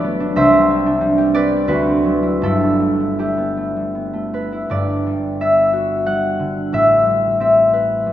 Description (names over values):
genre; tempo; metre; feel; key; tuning
classical, solo harp piece; 76-94 BPM; 3/4; rubato; G major; A4 = 440 Hz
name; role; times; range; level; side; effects
concert harp; solo; 0.0-8.1 s; G1 to F#5; -14 LUFS; equal; none
room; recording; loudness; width
wet concert hall reverb, RT60 2.5 s; nothing above 7.9 kHz; -14 LUFS; side -12 dB against mid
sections
0.0-4.7 A section; 4.7-8.1 B section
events
none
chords
0.4 Cadd9; 1.7 D13; 2.4 G69; 4.7 Gmaj7; 6.7 Am9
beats
| 0.36 1.00 1.67 | 2.40 3.18 3.95 | 4.71 5.40 6.06 | 6.72 7.39 8.06